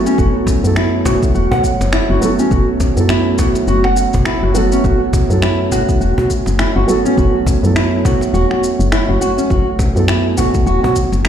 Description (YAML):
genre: organic downtempo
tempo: 103 BPM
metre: 4/4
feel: swing 58% on 16ths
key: F# minor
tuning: A4 = 439 Hz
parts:
  - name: felt-muted upright piano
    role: accompaniment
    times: 0.0-11.3 s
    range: F#3 to A4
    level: -19 LUFS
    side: right 5 dB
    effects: sidechain pumping, digital delay
  - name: warbly tape-like pad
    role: sustained chords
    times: 0.0-11.3 s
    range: F#3 to C#5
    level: -22 LUFS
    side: equal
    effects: chorus, built-in reverb, sidechain pumping
  - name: nylon-string guitar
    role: arpeggios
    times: 0.1-11.3 s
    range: C#4 to F#5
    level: -18 LUFS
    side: equal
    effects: vintage 12-bit sampler grit, digital delay
  - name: electronic shaker and finger snaps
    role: drums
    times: 0.1-11.3 s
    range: none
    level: -24 LUFS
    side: left 1 dB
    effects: none
  - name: woody FM bass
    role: bass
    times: 0.2-11.3 s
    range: E1 to F#2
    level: -16 LUFS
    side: left 1 dB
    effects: sidechain pumping
  - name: electronic kick drum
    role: drums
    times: 0.2-11.1 s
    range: none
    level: -17 LUFS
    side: left 1 dB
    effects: none
  - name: cajon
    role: percussion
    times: 0.2-11.2 s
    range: none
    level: -23 LUFS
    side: right 1 dB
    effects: none
room: moderate echo chamber reverb, RT60 1.7 s, small room ambience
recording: played on a big sound system in a bare room, large studio reverb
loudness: -12 LUFS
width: side -9 dB against mid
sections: 0.0-11.3 A section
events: none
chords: 0.0 F#m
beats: | 0.18 0.77 1.35 1.93 | 2.51 3.10 3.68 4.26 | 4.84 5.42 6.01 6.59 | 7.17 7.75 8.34 8.92 | 9.50 10.09 10.67 11.25